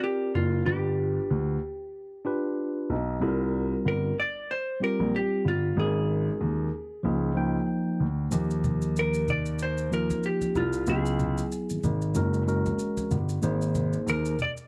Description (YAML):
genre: hip hop, jazz-hop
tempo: 94 BPM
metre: 4/4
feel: swing 57% on 16ths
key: Eb major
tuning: A4 = 441 Hz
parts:
  - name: vintage hollow-body jazz guitar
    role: melody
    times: 0.0-14.5 s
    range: F4 to D5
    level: -32 LUFS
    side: equal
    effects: none
  - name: mellow tine electric piano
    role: accompaniment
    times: 0.0-14.4 s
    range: F3 to G5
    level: -32 LUFS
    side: equal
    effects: none
  - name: dark baby grand piano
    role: bass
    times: 0.3-14.3 s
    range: Gb1 to Eb2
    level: -30 LUFS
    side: equal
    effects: none
  - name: maracas and congas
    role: percussion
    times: 8.3-14.7 s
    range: none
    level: -38 LUFS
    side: equal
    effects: none
room: small room ambience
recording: dark, warm production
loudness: -27 LUFS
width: mono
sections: 0.0-14.7 A section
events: none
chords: 0.0 Ebsus2 (rootless); 0.7 G7; 3.2 C5; 5.8 Ab5; 7.0 Dbadd9; 8.3 Ebadd9; 10.9 Dbm7; 12.2 Gbadd9; 13.4 Abadd9